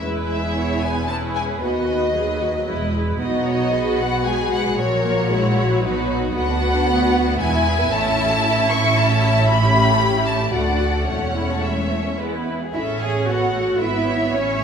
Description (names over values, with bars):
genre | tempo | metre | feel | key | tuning
quick classical-period movement for string orchestra | 113 BPM | 3/4 | straight | E major, A major from 6.4 s | A4 = 440 Hz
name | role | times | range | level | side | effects
clear studio violin section | melody | 0.0-14.6 s | C#5 to C#6 | -24 LUFS | left 2 dB | none
warm studio violin section | second line | 0.0-14.6 s | G#3 to G#5 | -24 LUFS | left 1 dB | none
rich studio viola section | accompaniment | 0.0-14.6 s | F#3 to C#5 | -24 LUFS | right 1 dB | none
dark studio double bass section | bass | 0.0-14.6 s | E1 to D#2 | -25 LUFS | right 2 dB | none
warm studio cello section | bass | 0.0-14.6 s | D2 to G#4 | -25 LUFS | right 1 dB | none
room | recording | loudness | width
wet scoring stage reverb, RT60 2.0 s | studio reverb | -17 LUFS | side -7 dB against mid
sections
0.0-12.7 A section; 12.7-14.6 B section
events
none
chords
0.0 E; 1.6 B/D#; 2.7 E; 3.2 B; 4.8 F#7/A#; 5.8 B; 6.4 Bm/D; 7.4 E; 7.9 A; 9.5 A7; 10.5 D; 11.1 A/E; 12.2 E; 12.7 A; 13.8 E/G#